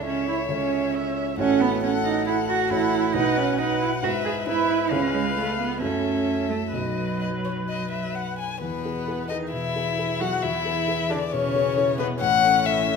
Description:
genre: quick classical-period movement for piano quartet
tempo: 135 BPM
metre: 4/4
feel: straight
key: E major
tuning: A4 = 440 Hz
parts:
  - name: warm violin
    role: melody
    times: 0.0-13.0 s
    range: B4 to G#5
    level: -26 LUFS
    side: left 8 dB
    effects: none
  - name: rich cello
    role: second line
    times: 0.0-13.0 s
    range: B2 to G#4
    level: -26 LUFS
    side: right 5 dB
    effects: none
  - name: dark baby grand piano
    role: accompaniment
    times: 0.0-13.0 s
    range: A1 to C#5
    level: -29 LUFS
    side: equal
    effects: none
  - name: warm viola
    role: accompaniment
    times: 0.0-13.0 s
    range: B3 to E5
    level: -31 LUFS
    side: right 2 dB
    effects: none
room: wet recital hall reverb, RT60 1.6 s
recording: minimal, uncompressed stereo recording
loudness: -21 LUFS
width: side -5 dB against mid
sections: 0.0-8.6 A section; 8.6-13.0 B section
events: none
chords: 0.0 A/C#; 1.4 F#m7/A; 3.2 B5; 4.0 E/G#; 4.9 C#7; 5.8 F#m7; 6.7 B; 8.6 E; 12.2 A

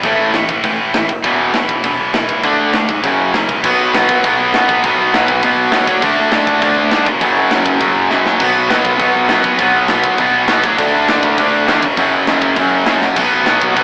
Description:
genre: punk rock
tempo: 201 BPM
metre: 4/4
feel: straight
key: unclear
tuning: A4 = 440 Hz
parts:
  - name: crunchy overdriven guitar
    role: riff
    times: 0.0-13.8 s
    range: E2 to D4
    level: -19 LUFS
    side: equal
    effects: none
  - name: distorted electric guitar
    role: riff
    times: 0.0-13.8 s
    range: E2 to D4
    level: -19 LUFS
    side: equal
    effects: overdrive
  - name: high-gain distorted guitar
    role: riff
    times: 0.0-13.8 s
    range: E2 to D4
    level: -19 LUFS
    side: equal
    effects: distortion
  - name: growling picked electric bass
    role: bass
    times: 0.0-13.8 s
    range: E1 to B2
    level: -25 LUFS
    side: equal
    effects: overdrive
  - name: tight metal drum kit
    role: drums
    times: 0.0-13.8 s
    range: crash cymbal, hi-hat, kick drum, snare drum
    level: -22 LUFS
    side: equal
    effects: none
room: light reverb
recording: rough rehearsal-room recording, AM radio sound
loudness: -14 LUFS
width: mono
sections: 0.0-3.6 A section; 3.6-13.2 B section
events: drum fill 8.1, 13.0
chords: 0.0 A5; 1.1 E5; 2.4 D5; 3.0 F#5; 3.6 B5; 5.9 D5; 7.1 F#5; 8.4 B5; 10.6 D5; 11.8 F#5; 13.2 B5

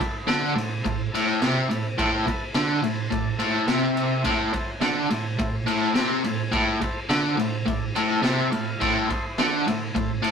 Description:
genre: garage rock duo or trio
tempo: 106 BPM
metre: 4/4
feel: straight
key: A minor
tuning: A4 = 439 Hz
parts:
  - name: combo organ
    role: sustained chords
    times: 0.0-10.3 s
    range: E4 to C6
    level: -34 LUFS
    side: equal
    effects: none
  - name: biting overdriven guitar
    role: riff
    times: 0.0-10.3 s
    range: A2 to D3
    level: -22 LUFS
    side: equal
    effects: tremolo
  - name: raw garage drum kit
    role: drums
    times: 0.0-10.3 s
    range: crash cymbal, kick drum, ride cymbal, snare drum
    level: -29 LUFS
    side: equal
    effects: none
room: moderate stone room reverb, RT60 1.3 s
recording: rough rehearsal-room recording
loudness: -21 LUFS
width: side -6 dB against mid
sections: 0.0-10.3 A section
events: transistor combo organ fill 2.6-4.3, 8.0-8.8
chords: 0.0 Am

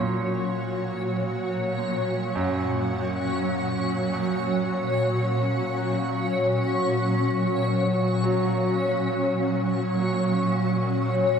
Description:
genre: dark ambient drone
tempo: free time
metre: none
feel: none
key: F# major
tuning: A4 = 438 Hz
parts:
  - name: granular cloud pad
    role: sustained chords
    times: 0.0-11.4 s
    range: F#4 to F#5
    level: -33 LUFS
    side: left 1 dB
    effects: built-in reverb, ensemble chorus, shimmer reverb
  - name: clear concert grand piano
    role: arpeggios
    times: 0.0-11.4 s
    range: F#2 to F#3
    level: -33 LUFS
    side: right 3 dB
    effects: tape echo, shimmer reverb
  - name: swarming drone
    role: drone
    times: 0.0-11.4 s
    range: A#2 to F#3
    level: -25 LUFS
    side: equal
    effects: built-in reverb, lush chorus
  - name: backwards swelling texture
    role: texture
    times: 0.0-11.4 s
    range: C#4 to C#5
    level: -27 LUFS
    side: left 2 dB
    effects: built-in reverb, ensemble chorus, shimmer reverb
room: wet lush hall reverb, RT60 2.8 s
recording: dreamy mix soaked in reverb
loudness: -22 LUFS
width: side -7 dB against mid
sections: 0.0-11.4 A section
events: fade-in on ambient pad 0.0-11.4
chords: 0.0 F#

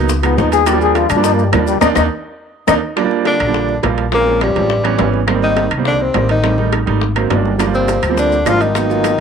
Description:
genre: Afro-Cuban jazz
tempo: 207 BPM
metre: 4/4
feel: straight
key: Eb major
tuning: A4 = 440 Hz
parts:
  - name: clear concert grand piano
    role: accompaniment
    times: 0.0-9.1 s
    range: Eb3 to F4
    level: -17 LUFS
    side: right 10 dB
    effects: none
  - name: upright bass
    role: bass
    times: 0.0-9.1 s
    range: G1 to G2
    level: -18 LUFS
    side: left 1 dB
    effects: none
  - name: bongos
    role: percussion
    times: 0.1-9.2 s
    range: none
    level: -24 LUFS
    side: left 14 dB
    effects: none
  - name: maracas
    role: percussion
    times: 0.1-2.7, 7.6-9.2 s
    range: none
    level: -32 LUFS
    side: left 15 dB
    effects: none
  - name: breathy trombone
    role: second line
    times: 0.2-9.2 s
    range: G2 to Ab4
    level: -19 LUFS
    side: left 13 dB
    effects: none
  - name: claves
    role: percussion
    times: 0.2-9.2 s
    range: none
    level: -25 LUFS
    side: left 15 dB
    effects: none
  - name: timbales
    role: percussion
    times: 0.2-9.2 s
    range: none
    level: -22 LUFS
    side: right 10 dB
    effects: none
  - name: breathy tenor saxophone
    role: melody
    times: 3.3-9.2 s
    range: G3 to F4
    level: -16 LUFS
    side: left 2 dB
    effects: none
room: light reverb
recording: 1960s-style stereo with parts hard left and right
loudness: -12 LUFS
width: side -6 dB against mid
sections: 0.0-3.0 A section; 3.0-9.2 B section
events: trombone solo 0.0-3.0; band accent 1.8-3.0; drum fill 2.2-3.0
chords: 0.1 Db9; 0.7 Ebmaj9; 3.0 Bb6; 4.1 Bbm7; 4.7 A9; 5.3 Abmaj7; 6.4 Am7b5; 7.0 Ab9; 7.6 Gm7

